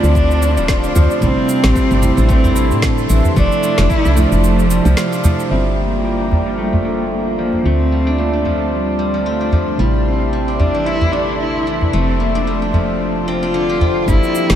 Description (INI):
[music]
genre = organic downtempo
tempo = 112 BPM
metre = 4/4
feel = swing 56% on 16ths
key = G dorian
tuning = A4 = 440 Hz
[part]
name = dark cello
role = melody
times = 0.0-14.6 s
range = G3 to F4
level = -20 LUFS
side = equal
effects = tape echo
[part]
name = muted felt-like synth keys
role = accompaniment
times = 0.0-14.6 s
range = C3 to E5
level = -23 LUFS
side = right 3 dB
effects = chorus, sidechain pumping, analog delay
[part]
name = warm analog pad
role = sustained chords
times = 0.0-14.6 s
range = F3 to C6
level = -23 LUFS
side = right 2 dB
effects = chorus, sidechain pumping
[part]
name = steel-string zither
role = arpeggios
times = 0.0-14.6 s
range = D3 to G4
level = -22 LUFS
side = left 2 dB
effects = low-pass filter, analog delay
[part]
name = woody FM bass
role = bass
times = 0.0-14.6 s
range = D1 to A2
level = -18 LUFS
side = equal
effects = sidechain pumping
[part]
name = electronic shaker and snare drum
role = drums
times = 0.0-5.5, 14.1-14.6 s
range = none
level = -25 LUFS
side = right 1 dB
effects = low-pass filter on perc, low-pass filter on snare
[part]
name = quartz singing bowl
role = texture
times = 0.0-14.1 s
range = A4 to E5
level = -34 LUFS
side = right 3 dB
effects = none
[part]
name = electronic kick drum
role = drums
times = 0.2-4.0, 14.1-14.2 s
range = none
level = -18 LUFS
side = equal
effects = none
[part]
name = udu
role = percussion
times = 0.9-13.9 s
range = none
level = -17 LUFS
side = equal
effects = none
[sound]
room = moderate huge ambient reverb, RT60 6.9 s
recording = dreamy mix soaked in reverb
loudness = -13 LUFS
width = side -10 dB against mid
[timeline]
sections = 0.0-5.5 A section; 5.5-14.1 B section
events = kick drops out 4.4-5.5; filter sweep on guzheng 5.5-14.1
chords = 0.0 Dm7; 1.2 Am7; 3.4 Fmaj7; 5.5 Gm7; 7.7 Dm7; 9.8 Am7; 11.9 Fmaj7